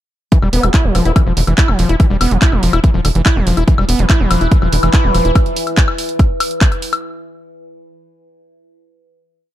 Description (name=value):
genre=psychedelic trance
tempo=143 BPM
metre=4/4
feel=straight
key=E phrygian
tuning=A4 = 440 Hz
part: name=overdriven acid bass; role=riff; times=0.3-5.3 s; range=D3 to E4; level=-18 LUFS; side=equal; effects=distortion, auto-pan, sidechain pumping, digital delay
part: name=electronic kick drum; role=drums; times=0.3-6.7 s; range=none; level=-12 LUFS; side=equal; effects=none
part: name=techno drum kit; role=drums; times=0.3-7.0 s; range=handclaps, hi-hat, woodblock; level=-19 LUFS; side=left 2 dB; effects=none
part: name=tight sequencer bass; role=bass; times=0.4-5.3 s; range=E1 to F1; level=-15 LUFS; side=equal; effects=none
part: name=formant-sweep wobble bass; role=second line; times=0.5-1.1 s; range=B3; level=-26 LUFS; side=left 2 dB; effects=chorus, sidechain pumping, high-pass filter, dub echo
part: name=overtone-sweeping drone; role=sustained chords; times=3.9-5.4 s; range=E3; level=-21 LUFS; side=equal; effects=chorus, built-in reverb, phaser, sidechain pumping
room=digital ambience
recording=dark, warm production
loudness=-11 LUFS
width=side -13 dB against mid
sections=0.3-7.0 groove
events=none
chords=0.3 E5